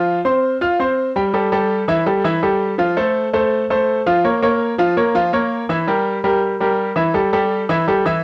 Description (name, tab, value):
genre	latin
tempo	165 BPM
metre	4/4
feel	straight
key	unclear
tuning	A4 = 440 Hz
part	bright grand piano	solo	0.0-8.2 s	E3 to F6	-18 LUFS	equal	cassette tape
room	moderate studio reverb, RT60 0.6 s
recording	home recording on cassette, nothing above 10.4 kHz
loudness	-18 LUFS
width	mono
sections	0.0-1.3 A section; 1.3-8.2 B section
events	none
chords	0.0 F5; 1.3 A5; 2.8 F; 4.2 Bbm; 5.7 Edim; 7.1 A5